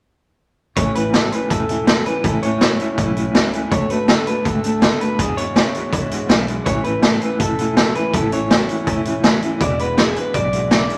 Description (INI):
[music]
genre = rockabilly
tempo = 163 BPM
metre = 4/4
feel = straight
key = A major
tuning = A4 = 440 Hz
[part]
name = electric guitar through a small old amp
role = melody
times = 0.8-11.0 s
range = G#4 to D5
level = -26 LUFS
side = equal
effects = none
[part]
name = picked steel-string acoustic guitar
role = accompaniment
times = 0.8-11.0 s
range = E2 to F#4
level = -29 LUFS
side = equal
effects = none
[part]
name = electric guitar through a small old amp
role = riff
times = 0.8-11.0 s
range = E2 to B3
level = -26 LUFS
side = equal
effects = tremolo
[part]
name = upright bass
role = bass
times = 0.8-10.9 s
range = E1 to E2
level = -30 LUFS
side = equal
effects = none
[part]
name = raw garage drum kit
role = drums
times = 0.8-11.0 s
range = hi-hat, kick drum, snare drum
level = -20 LUFS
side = equal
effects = none
[sound]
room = moderate studio reverb, RT60 0.8 s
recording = none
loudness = -18 LUFS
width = mono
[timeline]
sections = 0.8-11.0 A section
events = none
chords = 0.8 A; 3.7 D; 5.2 E7; 6.7 A; 9.6 E7